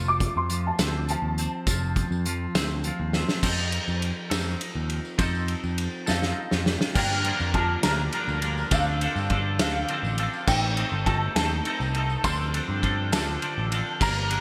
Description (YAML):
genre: indie rock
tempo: 68 BPM (dotted quarters)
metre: 6/8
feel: straight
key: unclear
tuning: A4 = 442 Hz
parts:
  - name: dark upright piano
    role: melody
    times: 0.0-2.2, 6.1-14.4 s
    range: F5 to D6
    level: -33 LUFS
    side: equal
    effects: ensemble chorus
  - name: twelve-string electric guitar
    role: riff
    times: 0.0-14.4 s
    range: G2 to Bb4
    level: -32 LUFS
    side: equal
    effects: double-tracked
  - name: picked electric bass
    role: bass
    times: 0.0-14.4 s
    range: F1 to G2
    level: -31 LUFS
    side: equal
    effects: none
  - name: loose indie drum kit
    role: drums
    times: 0.2-14.4 s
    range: crash cymbal, hi-hat, kick drum, ride cymbal, snare drum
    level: -30 LUFS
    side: equal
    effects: none
  - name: tambourine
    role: percussion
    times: 0.8-14.2 s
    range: none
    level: -42 LUFS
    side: equal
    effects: none
  - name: bell-like tine electric piano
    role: second line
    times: 6.1-14.4 s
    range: C4 to A4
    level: -43 LUFS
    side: equal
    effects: lush chorus
room: light reverb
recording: bright 1980s-style digital production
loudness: -26 LUFS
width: mono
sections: 0.0-3.4 A section; 3.4-7.0 B section; 7.0-14.4 C section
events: upright piano solo 0.0-3.4; drum fill 3.1, 6.1-7.0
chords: 0.0 F7; 7.0 Gm7; 8.7 Dm7; 10.5 Adim; 12.3 Dm7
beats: 0.79 | 1.67 2.55 | 3.44 4.32 | 5.20 6.08 | 6.96 7.84 | 8.72 9.60 | 10.49 11.37 | 12.25 13.13 | 14.02